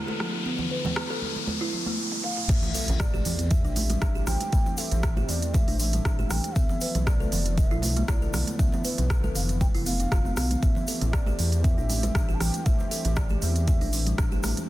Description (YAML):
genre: afro house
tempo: 118 BPM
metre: 4/4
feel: swing 53% on 16ths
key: A minor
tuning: A4 = 444 Hz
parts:
  - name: warm analog pad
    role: sustained chords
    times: 0.0-14.7 s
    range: D3 to G4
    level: -37 LUFS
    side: left 1 dB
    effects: chorus, sidechain pumping
  - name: kalimba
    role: arpeggios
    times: 0.0-14.5 s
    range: E3 to B4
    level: -33 LUFS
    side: right 1 dB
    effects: vintage 12-bit sampler grit, sidechain pumping, dub echo
  - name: riser and impact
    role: sound effects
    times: 0.0-4.5 s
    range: none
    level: -32 LUFS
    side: left 1 dB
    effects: none
  - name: congas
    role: percussion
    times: 0.1-14.7 s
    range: none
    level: -35 LUFS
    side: right 2 dB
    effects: none
  - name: afro-pop drum kit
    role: drums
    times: 0.2-14.7 s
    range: crash cymbal, hi-hat, rim click, toms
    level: -32 LUFS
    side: right 1 dB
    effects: soft clipping on snare, high-pass filter on snare, small room ambience, high-pass filter on toms, high-pass filter on hats, high-pass filter on cymbals
  - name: breathy mellow bass bansuri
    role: melody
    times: 2.2-14.4 s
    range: D5 to A5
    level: -36 LUFS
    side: right 1 dB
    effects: dub echo
  - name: dark detuned saw bass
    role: bass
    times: 2.5-14.5 s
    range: F1 to E2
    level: -27 LUFS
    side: equal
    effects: sidechain pumping
  - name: electronic kick drum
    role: drums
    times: 2.5-14.3 s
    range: none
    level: -24 LUFS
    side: equal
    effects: small room ambience
  - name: tube shaker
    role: percussion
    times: 2.5-14.7 s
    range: none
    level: -39 LUFS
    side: left 4 dB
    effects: none
room: small room ambience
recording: dense, heavily limited modern master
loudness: -23 LUFS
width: side -16 dB against mid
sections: 0.0-2.5 A section; 2.5-14.7 B section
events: build-up 0.0-2.5; riser 0.0-2.5; drum fill 2.1-2.5; drop 2.5-14.7; impact 2.5-4.5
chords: 0.0 Bm7b5; 2.5 Am7; 6.6 Bm7b5; 10.6 Am7